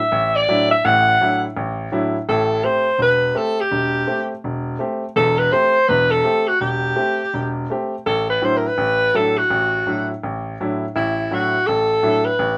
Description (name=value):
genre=jazz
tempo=166 BPM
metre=4/4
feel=swing 63% on 8ths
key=A dorian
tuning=A4 = 440 Hz
part: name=warm alto saxophone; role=melody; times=0.0-12.6 s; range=E4 to F#5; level=-19 LUFS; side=equal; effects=none
part: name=bright upright piano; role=accompaniment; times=0.1-12.6 s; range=E1 to G4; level=-24 LUFS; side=equal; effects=none
room=light reverb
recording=close, detailed microphones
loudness=-19 LUFS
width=mono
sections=0.0-2.3 A section; 2.3-12.6 B section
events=alto saxophone solo 0.0-2.3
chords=0.0 Dadd9/A; 2.3 Am7; 8.0 Dadd9/A